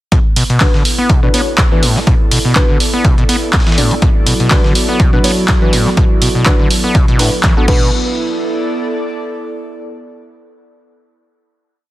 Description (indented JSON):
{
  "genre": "acid house",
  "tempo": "123 BPM",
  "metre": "4/4",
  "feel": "swing 55% on 16ths",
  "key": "B minor",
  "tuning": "A4 = 439 Hz",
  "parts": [
    { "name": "overdriven acid bass", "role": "riff", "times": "0.1-7.9 s", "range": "A2 to B3", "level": "-17 LUFS", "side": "equal", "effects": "distortion, sidechain pumping, dub echo" },
    { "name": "breakbeat sampler-style drum kit", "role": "drums", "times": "0.1-7.6 s", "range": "hi-hat, snare drum", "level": "-25 LUFS", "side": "left 1 dB", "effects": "none" },
    { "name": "electronic kick drum", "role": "drums", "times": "0.1-7.8 s", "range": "none", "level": "-12 LUFS", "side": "equal", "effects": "none" },
    { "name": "airy breathy pad", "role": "texture", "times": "0.1-9.8 s", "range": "B3 to D5", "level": "-21 LUFS", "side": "right 2 dB", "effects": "chorus, sidechain pumping" },
    { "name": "punchy analog drum machine", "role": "drums", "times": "0.4-7.8 s", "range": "crash cymbal, handclaps, hi-hat", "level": "-17 LUFS", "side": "right 1 dB", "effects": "none" },
    { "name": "deep mellow chord stab", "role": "stabs", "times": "0.6-7.9 s", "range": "D4 to D5", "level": "-22 LUFS", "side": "left 1 dB", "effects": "chorus, dub echo" },
    { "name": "warbly tape-like pad", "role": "sustained chords", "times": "4.0-7.7 s", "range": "F#3 to F#4", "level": "-21 LUFS", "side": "equal", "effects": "chorus, built-in reverb, sidechain pumping" }
  ],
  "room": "little or no reverb",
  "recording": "dense, heavily limited modern master",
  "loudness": "-10 LUFS",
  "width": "side -16 dB against mid",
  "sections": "0.1-7.9 groove; 7.9-9.9 final chord",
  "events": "none",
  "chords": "0.1 Bm",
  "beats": "| 0.12 0.61 1.09 1.58 | 2.07 2.56 3.05 3.53 | 4.02 4.51 5.00 5.49 | 5.97 6.46 6.95 7.44 | 7.92 8.41 8.90 9.39"
}